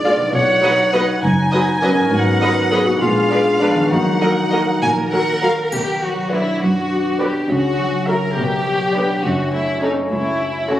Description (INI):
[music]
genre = cinematic, playful, whimsical film cue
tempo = 68 BPM (dotted quarters)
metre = 6/8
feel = straight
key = Eb minor, B minor from 5.7 s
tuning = A4 = 442 Hz
[part]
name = marimba with medium mallets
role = melody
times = 0.0-5.4 s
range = F3 to F4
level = -26 LUFS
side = left 1 dB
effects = none
[part]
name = rich chamber violin section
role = melody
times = 0.0-10.8 s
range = C#5 to Ab5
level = -26 LUFS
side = equal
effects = none
[part]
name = dark chamber violin section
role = second line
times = 0.0-10.8 s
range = D#4 to Ab5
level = -21 LUFS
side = left 1 dB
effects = none
[part]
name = mellow clarinet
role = second line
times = 0.0-5.4 s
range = D4 to D5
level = -19 LUFS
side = equal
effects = none
[part]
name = warm chamber viola section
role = accompaniment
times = 0.0-10.8 s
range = F#3 to B4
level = -23 LUFS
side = right 1 dB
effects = none
[part]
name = concert harp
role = arpeggios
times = 0.0-10.8 s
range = F#2 to C#5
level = -23 LUFS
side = left 1 dB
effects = none
[part]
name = dark symphonic cello section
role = bass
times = 0.0-10.8 s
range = C#2 to Eb3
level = -24 LUFS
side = right 1 dB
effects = none
[part]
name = warm studio double bass section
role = bass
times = 0.0-9.8 s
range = F1 to Eb2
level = -27 LUFS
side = right 1 dB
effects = none
[part]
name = mellow French horn section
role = sustained chords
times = 0.1-5.4 s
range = Bb3 to Ab4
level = -22 LUFS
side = left 1 dB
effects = none
[part]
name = triangle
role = percussion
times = 5.7-6.9 s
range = none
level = -34 LUFS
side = right 2 dB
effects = none
[sound]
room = wet scoring stage reverb, RT60 2.0 s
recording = recorded on a phone in the room, studio ambience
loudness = -15 LUFS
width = side -12 dB against mid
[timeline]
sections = 0.0-5.7 A section; 5.7-10.8 B section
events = none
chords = 0.3 B; 2.1 Abm7; 3.0 Bb7b9; 3.9 Ebm; 5.7 Bm; 7.5 F#7/C#; 8.4 Bm; 9.2 F#m